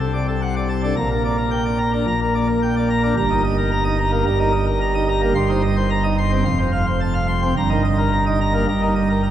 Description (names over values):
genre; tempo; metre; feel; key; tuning
classical, organ toccata; 109 BPM; 4/4; straight; G minor; A4 = 440 Hz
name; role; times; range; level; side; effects
pipe organ, plenum; solo; 0.0-9.3 s; F1 to C6; -17 LUFS; right 1 dB; none
room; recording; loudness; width
wet church reverb, RT60 3.6 s; none; -17 LUFS; side -11 dB against mid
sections
0.0-9.3 A section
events
none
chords
0.0 D7/C; 1.0 Gm/Bb; 3.2 Eb/G; 5.4 Cm7/G; 6.5 F; 7.6 Eb/G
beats
0.42 | 0.97 1.51 2.07 2.62 | 3.16 3.71 4.26 4.81 | 5.36 5.91 6.46 7.01 | 7.57 8.12 8.67 9.24